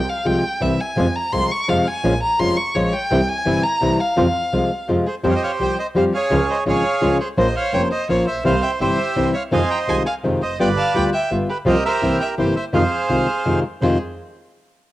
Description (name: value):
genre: tango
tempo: 168 BPM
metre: 3/4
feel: rubato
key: F minor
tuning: A4 = 440 Hz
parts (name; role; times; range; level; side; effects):
- warm violin; second line; 0.0-14.0 s; G4 to Db6; -24 LUFS; left 1 dB; none
- clear double bass; bass; 0.0-14.0 s; F1 to F2; -25 LUFS; right 2 dB; none
- nylon-string guitar; accompaniment; 0.2-14.0 s; F2 to C5; -20 LUFS; left 1 dB; none
- bandoneon; melody; 5.1-14.0 s; G4 to C6; -22 LUFS; right 3 dB; cassette tape
room: moderate spring reverb, RT60 1.5 s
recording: home recording on cassette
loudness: -17 LUFS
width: side -15 dB against mid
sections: 0.0-5.2 A section; 5.2-13.8 B section; 13.8-14.9 C section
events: violin solo 0.0-5.2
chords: 0.0 Fm; 0.6 C; 1.0 Fm; 2.0 Bbm7; 3.1 C; 4.2 Fm; 5.2 Fsus2; 6.3 Db; 7.4 Bbmadd9; 8.4 C; 9.5 Fm7; 10.6 G7; 11.7 C7sus4; 12.0 C7; 12.7 Fm7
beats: 0.26 0.62 | 0.97 1.33 1.69 | 2.04 2.40 2.75 | 3.11 3.46 3.82 | 4.17 4.53 4.88 | 5.24 5.60 5.96 | 6.31 6.67 7.02 | 7.38 7.73 8.09 | 8.45 8.80 9.16 | 9.52 9.88 10.24 | 10.60 10.95 11.31 | 11.67 12.02 12.38 | 12.74 13.10 13.46 | 13.81